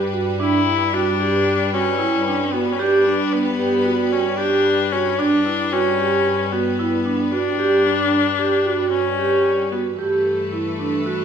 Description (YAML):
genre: contemporary instrumental, chamber music in an uneven meter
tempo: 225 BPM (eighths)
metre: 9/8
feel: straight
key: G lydian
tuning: A4 = 440 Hz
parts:
  - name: rich viola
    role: second line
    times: 0.0-11.2 s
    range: A3 to E4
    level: -21 LUFS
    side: left 6 dB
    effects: none
  - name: warm studio string section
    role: sustained chords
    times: 0.0-11.2 s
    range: G2 to B4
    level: -26 LUFS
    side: left 2 dB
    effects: none
  - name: vibraphone with medium mallets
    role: arpeggios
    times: 0.1-11.2 s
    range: D4 to G4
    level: -19 LUFS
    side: right 4 dB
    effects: none
room: wet recital hall reverb, RT60 1.7 s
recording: minimal, uncompressed stereo recording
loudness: -17 LUFS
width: side -7 dB against mid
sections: 0.0-10.0 A section; 10.0-11.2 B section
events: none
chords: 0.0 Gmaj7; 10.0 G69